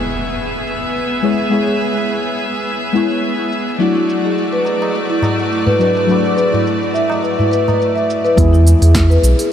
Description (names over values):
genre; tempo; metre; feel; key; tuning
organic downtempo; 105 BPM; 4/4; swing 55% on 16ths; E mixolydian; A4 = 440 Hz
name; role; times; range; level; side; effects
deep mellow chord stab; accompaniment; 0.0-9.5 s; E3 to C#5; -20 LUFS; left 2 dB; chorus, phaser, sidechain pumping, diffuse ambient delay
clear chamber string section; sustained chords; 0.0-8.3 s; A3 to E5; -20 LUFS; equal; sidechain pumping
impact; sound effects; 0.0-1.5 s; none; -33 LUFS; right 1 dB; none
deep house drum kit; drums; 0.1-9.5 s; hi-hat, shaker, snare drum; -26 LUFS; right 1 dB; low-pass filter on perc, low-pass filter on snare, low-pass filter on hats, low-pass filter on room
marimba with soft mallets; arpeggios; 3.8-9.5 s; E4 to E5; -18 LUFS; equal; diffuse ambient delay
tabla; percussion; 4.2-8.3 s; none; -22 LUFS; left 1 dB; none
round analog bass; bass; 8.4-9.3 s; B1 to E2; -9 LUFS; equal; sidechain pumping
electronic kick drum; drums; 8.4-9.1 s; none; -16 LUFS; equal; none
room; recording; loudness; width
wet huge ambient reverb, RT60 7.9 s; dreamy mix soaked in reverb; -13 LUFS; side -9 dB against mid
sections
0.0-8.4 A section; 8.4-9.5 B section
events
impact 0.0-1.5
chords
0.0 E; 3.8 D; 8.4 E